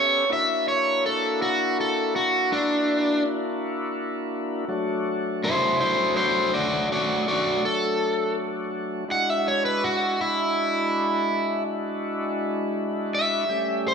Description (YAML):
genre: blues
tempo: 55 BPM (dotted quarters)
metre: 12/8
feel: straight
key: unclear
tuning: A4 = 440 Hz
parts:
  - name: crunchy overdriven guitar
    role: melody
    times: 0.0-13.9 s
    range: D4 to F#5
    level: -22 LUFS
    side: equal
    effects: spring reverb
  - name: tonewheel organ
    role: sustained chords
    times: 0.0-13.9 s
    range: F#3 to A4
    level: -27 LUFS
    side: left 1 dB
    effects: overdrive, slow rotary speaker
room: moderate large studio reverb, RT60 1.2 s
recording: band playing live in one room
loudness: -22 LUFS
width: side -6 dB against mid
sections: 0.0-13.9 A section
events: none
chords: 0.3 F#aug7; 4.7 D9/F#; 9.1 E9